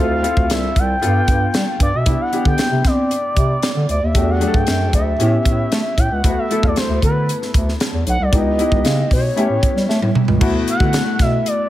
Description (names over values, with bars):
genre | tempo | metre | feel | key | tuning
polished 1980s jazz-funk pop | 115 BPM | 4/4 | straight | unclear | A4 = 439 Hz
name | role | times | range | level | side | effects
expressive synth lead | melody | 0.0-11.7 s | B4 to G5 | -21 LUFS | equal | chorus
clear grand piano | accompaniment | 0.0-11.7 s | F#3 to E5 | -22 LUFS | left 2 dB | lush chorus
mellow bass clarinet | bass | 0.0-11.4 s | B1 to C4 | -19 LUFS | equal | none
crisp fusion drum kit | drums | 0.2-11.6 s | crash cymbal, hi-hat, kick drum, snare drum, toms | -18 LUFS | equal | gated reverb
room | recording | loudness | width
light reverb | none | -14 LUFS | side -14 dB against mid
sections
0.0-10.4 A section; 10.4-11.7 B section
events
grand piano fill 9.6-10.4; drum fill 9.9-10.4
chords
0.0 Dm9; 1.0 G7; 2.1 Cmaj9; 4.2 Em11; 5.2 A9; 6.2 D69; 8.3 C#m7b5; 9.4 A7; 10.4 D69